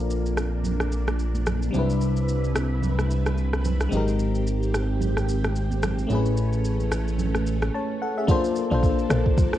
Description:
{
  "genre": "amapiano",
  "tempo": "110 BPM",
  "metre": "4/4",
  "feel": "swing 58% on 16ths",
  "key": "unclear",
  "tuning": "A4 = 439 Hz",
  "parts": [
    { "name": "FM electric piano", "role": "accompaniment", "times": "0.0-9.6 s", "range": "G3 to A5", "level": "-28 LUFS", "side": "left 4 dB", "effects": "chorus, low-pass filter" },
    { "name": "ensemble organ-string", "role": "sustained chords", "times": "0.0-9.6 s", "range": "C3 to B4", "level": "-31 LUFS", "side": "right 2 dB", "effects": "ensemble chorus, sidechain pumping, low-pass filter" },
    { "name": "fat analog bass", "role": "bass", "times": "0.0-7.7 s", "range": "Ab1 to C2", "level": "-25 LUFS", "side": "equal", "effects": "none" },
    { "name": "smooth R&B drum kit", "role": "drums", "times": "0.1-9.6 s", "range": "kick drum, rim click, shaker", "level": "-26 LUFS", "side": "equal", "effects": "none" },
    { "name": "congas", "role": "percussion", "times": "0.4-9.6 s", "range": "none", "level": "-34 LUFS", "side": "right 5 dB", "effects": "none" },
    { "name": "woody log drum bass", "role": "bass", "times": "8.7-9.5 s", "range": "Bb1", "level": "-24 LUFS", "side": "equal", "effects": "none" }
  ],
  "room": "light reverb",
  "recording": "worn, warbling old tape, cassette tape, warbly pitch drift, nothing above 10.8 kHz",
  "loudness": "-22 LUFS",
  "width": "side -12 dB against mid",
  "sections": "0.0-8.3 A section; 8.3-9.6 B section",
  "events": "break 7.7-8.3; drop 8.3-9.6",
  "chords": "0.0 Bbmaj9; 1.7 Cmaj9; 3.9 Abmaj9; 6.1 Amaj9; 8.3 Bbmaj9",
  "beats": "0.10 0.65 1.19 | 1.74 2.28 2.83 3.38 | 3.92 4.47 5.01 5.56 | 6.10 6.65 7.19 7.74 | 8.28 8.83 9.38"
}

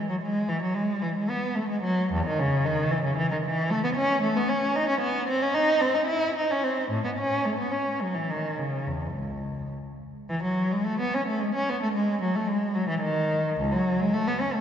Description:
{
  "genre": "classical, baroque-style suite movement for unaccompanied cello",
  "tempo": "111 BPM",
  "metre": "3/4",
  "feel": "rubato",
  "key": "E major, C# minor from 3.7 s",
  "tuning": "A4 = 438 Hz",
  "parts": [
    { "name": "warm cello", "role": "solo", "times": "0.0-14.6 s", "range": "C#2 to E4", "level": "-24 LUFS", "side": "equal", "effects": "none" }
  ],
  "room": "wet church reverb, RT60 3.1 s",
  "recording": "recorded in a church or concert hall, nothing above 7.8 kHz",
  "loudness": "-24 LUFS",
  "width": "side -8 dB against mid",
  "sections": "0.0-10.3 A section; 10.3-14.6 B section",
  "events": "none",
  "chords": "none",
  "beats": "| 0.50 1.03 1.56 | 2.12 2.66 3.18 | 3.71 4.24 4.77 | 5.30 5.83 6.37 | 6.91 7.45 8.01 | 8.58 9.15 9.72 | 10.30 10.85 11.40 | 11.94 12.48 13.02 | 13.58 14.13"
}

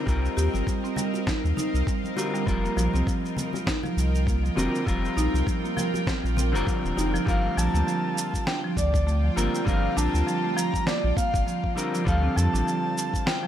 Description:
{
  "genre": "organic downtempo",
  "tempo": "100 BPM",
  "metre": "4/4",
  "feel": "swing 57% on 16ths",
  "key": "G minor",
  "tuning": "A4 = 440 Hz",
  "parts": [
    { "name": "clean electric guitar", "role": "accompaniment", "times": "0.0-13.5 s", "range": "D3 to Bb4", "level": "-32 LUFS", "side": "left 2 dB", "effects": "sidechain pumping, ping-pong delay" },
    { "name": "bowed-like drone", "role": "sustained chords", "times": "0.0-13.5 s", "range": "C4 to G5", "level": "-33 LUFS", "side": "right 1 dB", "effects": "built-in reverb, sidechain pumping" },
    { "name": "buzzing marimba with medium hard mallets", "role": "arpeggios", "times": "0.1-13.5 s", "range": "F3 to G4", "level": "-30 LUFS", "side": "right 3 dB", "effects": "ping-pong delay" },
    { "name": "warm sub bass", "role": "bass", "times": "0.1-12.6 s", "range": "Eb1 to F2", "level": "-24 LUFS", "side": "equal", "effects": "none" },
    { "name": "electronic kick drum", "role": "drums", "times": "0.1-13.2 s", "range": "none", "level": "-28 LUFS", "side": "equal", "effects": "none" },
    { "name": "electronic shaker and snare drum", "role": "drums", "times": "0.1-13.4 s", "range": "none", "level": "-32 LUFS", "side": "equal", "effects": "none" },
    { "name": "congas and bongos", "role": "percussion", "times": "0.1-7.1 s", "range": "none", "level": "-36 LUFS", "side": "left 3 dB", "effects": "none" },
    { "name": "breathy flute-like synth lead", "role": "melody", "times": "7.3-13.5 s", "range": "D5 to Bb5", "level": "-30 LUFS", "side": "left 1 dB", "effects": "chorus, tape echo" }
  ],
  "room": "little or no reverb",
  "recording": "none",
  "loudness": "-23 LUFS",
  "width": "side -10 dB against mid",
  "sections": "0.0-7.3 A section; 7.3-13.5 B section",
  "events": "none",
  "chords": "0.0 Cm7; 2.5 F9sus4; 7.3 Gm9; 12.1 Dm7",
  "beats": "| 0.07 0.67 1.27 1.87 | 2.47 3.07 3.67 4.27 | 4.87 5.47 6.07 6.67 | 7.27 7.87 8.47 9.07 | 9.67 10.27 10.87 11.47 | 12.07 12.67 13.27"
}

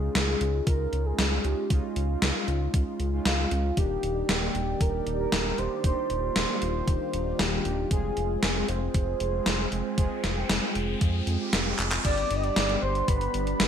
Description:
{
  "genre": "synthwave",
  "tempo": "116 BPM",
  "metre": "4/4",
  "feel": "straight",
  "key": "unclear",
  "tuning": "A4 = 440 Hz",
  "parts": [
    { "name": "expressive synth lead", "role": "melody", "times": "0.0-13.7 s", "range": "F4 to Eb5", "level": "-31 LUFS", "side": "equal", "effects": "lush chorus, ping-pong delay" },
    { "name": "analog synth brass", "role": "stabs", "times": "0.0-13.7 s", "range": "G3 to Ab4", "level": "-35 LUFS", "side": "right 3 dB", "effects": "chorus" },
    { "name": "round analog bass", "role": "bass", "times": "0.0-13.7 s", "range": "Eb1 to F2", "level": "-30 LUFS", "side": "equal", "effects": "none" },
    { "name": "gated 80s digital drum machine", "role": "drums", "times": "0.2-13.7 s", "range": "crash cymbal, handclaps, hi-hat, snare drum", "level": "-28 LUFS", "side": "equal", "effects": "gated reverb, gated reverb snare" },
    { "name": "electronic kick drum", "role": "drums", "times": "0.7-13.2 s", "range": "none", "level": "-26 LUFS", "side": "equal", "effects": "none" },
    { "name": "phased analog pad", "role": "sustained chords", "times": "3.8-13.7 s", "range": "Eb3 to G5", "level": "-35 LUFS", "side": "equal", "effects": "phaser, chorus, sidechain pumping" },
    { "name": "riser", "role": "sound effects", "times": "9.1-12.0 s", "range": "none", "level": "-38 LUFS", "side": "right 1 dB", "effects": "none" },
    { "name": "airy dreamy lead", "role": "second line", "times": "12.0-13.7 s", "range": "B5 to Eb6", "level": "-34 LUFS", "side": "equal", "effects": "chorus, digital delay" }
  ],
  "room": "light reverb, digital ambience",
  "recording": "bright 1980s-style digital production",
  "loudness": "-24 LUFS",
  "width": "side -8 dB against mid",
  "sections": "0.0-12.0 A section; 12.0-13.7 B section",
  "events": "riser 9.1-12.0; drum fill 11.8",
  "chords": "0.0 Dbadd9; 3.8 Ebmaj7; 7.9 Fm; 12.0 G",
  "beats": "0.15 0.67 1.19 | 1.70 2.22 2.74 3.25 | 3.77 4.29 4.81 5.32 | 5.84 6.36 6.88 7.39 | 7.91 8.43 8.94 9.46 | 9.98 10.50 11.01 11.53 | 12.05 12.56 13.08 13.60"
}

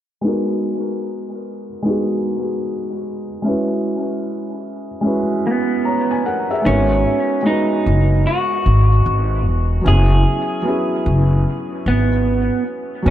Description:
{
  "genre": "hip hop",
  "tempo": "75 BPM",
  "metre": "4/4",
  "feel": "swing 64% on 16ths",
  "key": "unclear",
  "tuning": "A4 = 440 Hz",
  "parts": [
    { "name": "felt-muted upright piano", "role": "accompaniment", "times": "0.2-13.1 s", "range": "F#3 to A#5", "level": "-20 LUFS", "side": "equal", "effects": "low-pass filter, dub echo" },
    { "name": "electric guitar through a small old amp", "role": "melody", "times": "5.5-13.1 s", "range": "B3 to G#4", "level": "-20 LUFS", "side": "right 2 dB", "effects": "spring reverb, low-pass filter, dub echo" },
    { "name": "upright bass", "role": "bass", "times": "6.7-13.1 s", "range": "E1 to G#1", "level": "-15 LUFS", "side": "equal", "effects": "none" }
  ],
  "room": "light reverb, small room ambience",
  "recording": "echo-heavy mix, low-pass filter",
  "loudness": "-16 LUFS",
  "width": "side -12 dB against mid",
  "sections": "0.3-6.7 A section; 6.7-13.1 B section",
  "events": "filter sweep 0.3-6.7",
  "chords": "0.3 G#m9; 3.5 F#9sus4; 6.7 G#m9; 9.9 F#9sus4",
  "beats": "| 0.25 1.05 1.85 2.65 | 3.45 4.25 5.05 5.85 | 6.65 7.45 8.25 9.05 | 9.85 10.65 11.45 12.25 | 13.05"
}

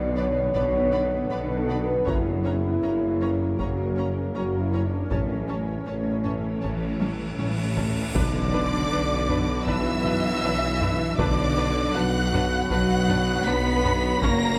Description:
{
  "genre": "cinematic, hybrid orchestral and electronic film score",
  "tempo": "79 BPM",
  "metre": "4/4",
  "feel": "straight",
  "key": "B minor",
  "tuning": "A4 = 444 Hz",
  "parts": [
    { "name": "clear trombone section", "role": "sustained chords", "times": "0.0-14.6 s", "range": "C#3 to C#4", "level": "-37 LUFS", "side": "equal", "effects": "none" },
    { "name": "granular cloud pad", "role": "sustained chords", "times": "0.1-14.6 s", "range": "E3 to C#5", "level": "-37 LUFS", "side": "equal", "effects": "none" },
    { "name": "warm French horn section", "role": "sustained chords", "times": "0.0-14.6 s", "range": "C#4 to D5", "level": "-32 LUFS", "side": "equal", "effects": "none" },
    { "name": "mellow tuba", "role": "bass", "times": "0.0-14.6 s", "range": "F#1 to B1", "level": "-33 LUFS", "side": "equal", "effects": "none" },
    { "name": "rich symphonic cello section", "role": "bass", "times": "0.0-14.6 s", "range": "F#2 to B3", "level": "-32 LUFS", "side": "equal", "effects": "none" },
    { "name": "warm chamber double bass section", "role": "bass", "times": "0.0-14.6 s", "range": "F#1 to B1", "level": "-34 LUFS", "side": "equal", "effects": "none" },
    { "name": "warm symphonic violin section", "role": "melody", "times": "0.2-14.6 s", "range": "A5 to B6", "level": "-34 LUFS", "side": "equal", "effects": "none" },
    { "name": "warm symphonic violin section", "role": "second line", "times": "0.2-14.6 s", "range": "C#5 to B5", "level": "-35 LUFS", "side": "equal", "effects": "none" },
    { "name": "warm symphonic viola section", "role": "accompaniment", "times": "0.2-14.3 s", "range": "B3 to C#5", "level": "-37 LUFS", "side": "equal", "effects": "none" },
    { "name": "taiko ensemble", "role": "drums", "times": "0.6-14.6 s", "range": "none", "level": "-33 LUFS", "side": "equal", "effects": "none" },
    { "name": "cymbal swell and impact", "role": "sound effects", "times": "6.7-11.2 s", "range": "none", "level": "-38 LUFS", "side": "equal", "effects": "none" }
  ],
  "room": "wet scoring stage reverb, RT60 1.8 s",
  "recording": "none",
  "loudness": "-24 LUFS",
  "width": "mono",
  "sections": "0.0-8.1 A section; 8.1-14.6 A section",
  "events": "cymbal swell 6.7-8.1; drum fill 7.0-8.1; impact 8.1-11.2",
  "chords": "0.0 Bm; 2.1 F#; 5.1 A; 8.1 Bm",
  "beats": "0.55 1.31 | 2.07 2.83 3.59 4.35 | 5.11 5.87 6.63 7.39 | 8.15 8.91 9.67 10.43 | 11.19 11.95 12.70 13.46 | 14.22"
}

